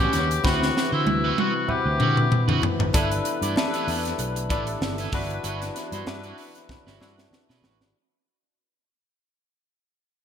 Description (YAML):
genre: polished 1980s jazz-funk pop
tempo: 96 BPM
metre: 4/4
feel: swing 54% on 16ths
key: G major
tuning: A4 = 440 Hz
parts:
  - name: warm cor anglais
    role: melody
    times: 0.0-2.6 s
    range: E4 to G4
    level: -26 LUFS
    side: left 3 dB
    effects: none
  - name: barky tine electric piano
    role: accompaniment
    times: 0.0-8.0 s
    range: C4 to F#5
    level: -29 LUFS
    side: left 4 dB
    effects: analog chorus
  - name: hollow soft pad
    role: sustained chords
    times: 0.0-7.9 s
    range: C3 to F#5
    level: -36 LUFS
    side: right 2 dB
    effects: chorus
  - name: electric guitar at the edge of break-up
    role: riff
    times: 0.0-7.9 s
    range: G3 to D5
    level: -32 LUFS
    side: right 8 dB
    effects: wide subtle chorus
  - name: fingered electric bass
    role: bass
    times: 0.0-7.9 s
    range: G1 to D3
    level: -28 LUFS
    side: equal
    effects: none
  - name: crisp fusion drum kit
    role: drums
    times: 0.1-7.9 s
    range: hi-hat, kick drum, snare drum, toms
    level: -25 LUFS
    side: equal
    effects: gated reverb
  - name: congas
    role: percussion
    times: 0.1-7.8 s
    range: none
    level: -38 LUFS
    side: right 1 dB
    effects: none
room: light reverb, small room ambience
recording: bright 1980s-style digital production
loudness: -21 LUFS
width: side -8 dB against mid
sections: 0.0-2.9 A section; 2.9-7.9 B section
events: drum fill 0.4-2.9, 6.7-7.9; fade-out 2.9-7.9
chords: 0.4 D13; 2.9 G69; 5.1 Cmaj9#11/G (rootless)